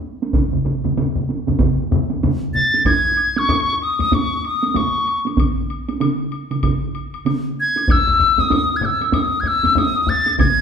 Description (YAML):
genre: japanese traditional, taiko drum ensemble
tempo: 96 BPM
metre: 4/4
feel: swing 60% on 16ths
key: G# miyako bushi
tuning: A4 = 442 Hz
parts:
  - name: taiko ensemble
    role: percussion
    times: 0.2-10.6 s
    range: none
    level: -23 LUFS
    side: right 4 dB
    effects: none
  - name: solo taiko drums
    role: percussion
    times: 0.3-10.6 s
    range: none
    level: -23 LUFS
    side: right 2 dB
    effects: none
  - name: solo taiko drums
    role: percussion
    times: 0.3-10.6 s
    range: none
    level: -21 LUFS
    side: equal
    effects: none
  - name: taiko ensemble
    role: percussion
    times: 0.3-10.6 s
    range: none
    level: -23 LUFS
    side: left 4 dB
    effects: none
  - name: piccolo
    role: melody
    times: 2.5-10.6 s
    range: C#6 to A6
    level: -16 LUFS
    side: left 2 dB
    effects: none
  - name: woodblock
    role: percussion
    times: 2.9-10.6 s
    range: none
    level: -32 LUFS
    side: left 6 dB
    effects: none
room: wet large studio reverb, RT60 1.2 s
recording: band playing live in one room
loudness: -16 LUFS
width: side -7 dB against mid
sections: 0.0-2.9 A section; 2.9-10.6 B section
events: none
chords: none